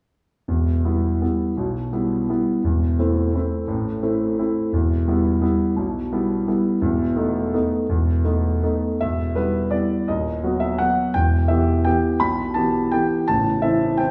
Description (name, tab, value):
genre	classical, piano waltz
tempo	152-180 BPM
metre	3/4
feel	rubato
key	E minor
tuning	A4 = 440 Hz
part	clear concert grand piano	solo	0.5-14.1 s	A0 to B5	-21 LUFS	equal	none
room	wet recital hall reverb, RT60 1.5 s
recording	heard from further back in the room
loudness	-21 LUFS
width	mono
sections	0.5-9.0 A section; 9.0-14.1 B section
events	none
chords	0.5 Em; 2.6 Am/E; 4.7 Em; 6.8 B7/E; 9.0 Em; 10.1 B/D#; 11.2 Em; 13.3 Am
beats	| 0.48 0.84 1.21 | 1.57 1.93 2.29 | 2.64 2.99 3.35 | 3.69 4.03 4.39 | 4.73 5.08 5.42 | 5.77 6.11 6.47 | 6.82 7.17 7.53 | 7.89 8.24 8.62 | 9.00 9.36 9.72 | 10.08 10.44 10.80 | 11.15 11.50 11.86 | 12.21 12.56 12.93 | 13.28 13.63 13.99